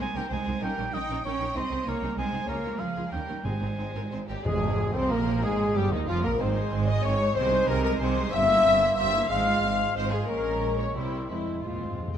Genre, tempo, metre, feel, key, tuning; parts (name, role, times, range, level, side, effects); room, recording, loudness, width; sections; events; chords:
classical, dramatic, fast romantic movement for symphony orchestra; 174-196 BPM; 3/4; rubato; Ab major, F minor from 4.5 s; A4 = 439 Hz
warm symphonic violin section; melody; 0.0-12.2 s; Eb4 to G5; -38 LUFS; left 4 dB
mellow cor anglais; second line; 0.0-12.1 s; Eb4 to Ab5; -36 LUFS; right 1 dB
rich symphonic violin section; second line; 0.0-12.2 s; Eb4 to G5; -37 LUFS; left 2 dB
warm studio viola section; accompaniment; 0.0-12.1 s; Eb3 to F4; -35 LUFS; right 1 dB
rich symphonic double bass section; bass; 0.0-12.1 s; F1 to Eb2; -32 LUFS; right 3 dB
warm symphonic cello section; bass; 0.0-12.1 s; Eb2 to Eb4; -32 LUFS; right 3 dB
mellow French horn section; sustained chords; 0.6-12.1 s; Ab3 to F5; -27 LUFS; left 3 dB
cymbal swell and tam-tam; percussion; 2.5-5.7 s; -42 LUFS; left 2 dB
timpani; percussion; 3.4-4.9, 11.3-12.2 s; F2 to Ab2; -35 LUFS; left 1 dB
mellow flute section; second line; 4.3-12.1 s; Eb5 to F6; -37 LUFS; left 1 dB
clear trumpet section; stabs; 4.3-12.1 s; Eb4 to F5; -35 LUFS; right 2 dB
warm bassoon; accompaniment; 4.4-12.1 s; Eb3 to C4; -36 LUFS; right 1 dB
moderate concert hall reverb, RT60 1.8 s; -24 LUFS; side -9 dB against mid
0.0-4.5 A section; 4.5-12.2 B section
band accent 4.5-4.8; timpani fill 11.3-12.2
0.0 Ab/C; 0.6 Eb7/Bb; 1.6 Ab/C; 2.5 Bbm7/Db; 3.1 Eb7; 3.5 Ab; 4.5 Abadd9; 5.4 Fm; 6.4 Ab; 7.4 Ab/C; 8.3 C7/G; 9.3 Fm/Ab; 10.3 Bbm7; 10.9 C; 11.3 Fm